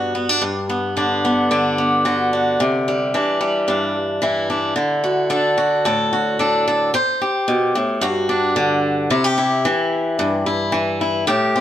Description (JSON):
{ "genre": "highlife", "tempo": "111 BPM", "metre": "4/4", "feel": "straight", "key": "unclear", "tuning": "A4 = 440 Hz", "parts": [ { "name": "picked swing-style acoustic guitar", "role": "solo", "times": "0.0-11.6 s", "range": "G2 to C5", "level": "-16 LUFS", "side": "equal", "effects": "none" } ], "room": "moderate stone room reverb, RT60 1.2 s", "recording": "band playing live in one room", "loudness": "-16 LUFS", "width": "side -11 dB against mid", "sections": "0.0-6.9 A section; 6.9-11.6 B section", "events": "none", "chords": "0.0 Gmaj7; 2.6 Cadd9; 4.8 Dadd9; 6.9 Am7; 8.0 G5; 9.1 C" }